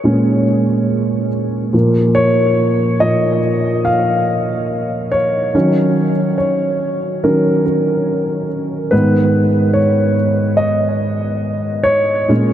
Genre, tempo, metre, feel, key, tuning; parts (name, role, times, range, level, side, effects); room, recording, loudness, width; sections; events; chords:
pop ballad; 71 BPM; 4/4; straight; A4 = 440 Hz
warm grand piano; solo; 0.0-12.5 s; G#2 to E#5; -13 LUFS; equal; tape echo
wet huge ambient reverb, RT60 7.9 s; dreamy mix soaked in reverb; -13 LUFS; side -11 dB against mid
0.0-12.5 A section
grand piano solo 0.0-12.5
0.0 A#m7; 1.7 A#madd11; 5.5 D#m7; 8.9 G#m